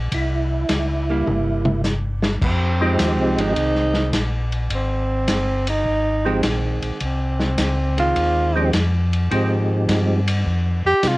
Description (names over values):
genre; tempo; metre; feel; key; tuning
soul jazz organ trio; 104 BPM; 4/4; swing 68% on 8ths; F minor; A4 = 440 Hz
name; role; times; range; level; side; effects
mellow tonewheel organ; bass; 0.0-11.2 s; G1 to C3; -21 LUFS; equal; chorus vibrato, slow rotary speaker
percussive tonewheel organ; melody; 0.1-10.2 s; F3 to G4; -22 LUFS; right 1 dB; slow rotary speaker, chorus vibrato, cassette tape
vintage drum kit; drums; 0.1-11.2 s; crash cymbal, hi-hat, kick drum, ride cymbal, snare drum, toms; -25 LUFS; equal; cassette tape
archtop guitar, miked and amplified; accompaniment; 1.1-10.9 s; Eb3 to E4; -27 LUFS; right 2 dB; cassette tape
breathy tenor saxophone; melody; 2.4-11.2 s; C4 to G4; -21 LUFS; right 1 dB; cassette tape
room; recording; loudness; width
moderate booth ambience, RT60 0.2 s; home recording on cassette; -18 LUFS; side -20 dB against mid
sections
0.0-2.4 A section; 2.4-11.2 B section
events
drum fill 1.3-2.4; tenor saxophone solo 2.4-11.2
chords
0.1 C7; 2.4 Fm7